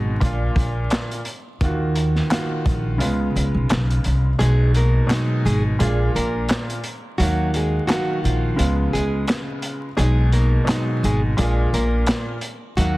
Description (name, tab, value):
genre	hip hop, boom-bap hip-hop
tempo	86 BPM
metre	4/4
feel	swing 54% on 16ths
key	unclear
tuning	A4 = 440 Hz
part	warm upright piano	accompaniment	0.0-13.0 s	Bb2 to F5	-23 LUFS	equal	none
part	upright bass	bass	0.0-13.0 s	G#1 to Eb2	-20 LUFS	equal	none
part	crunchy breakbeat drum kit	drums	0.2-13.0 s	handclaps, hi-hat, kick drum, snare drum	-25 LUFS	equal	none
part	nylon-string guitar	melody	4.4-13.0 s	F3 to Bb4	-26 LUFS	equal	none
room	small room ambience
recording	dense, heavily limited modern master, vinyl crackle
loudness	-18 LUFS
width	side -19 dB against mid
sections	0.0-13.0 A section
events	break 0.0-4.4; kick muted 3.0-4.4, 4.4-13.0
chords	0.2 Bb; 1.6 Ebmadd9; 3.0 Db7; 4.4 B6; 5.8 Bb; 7.2 Ebmadd9; 8.6 Db7; 10.0 B6; 11.4 Bb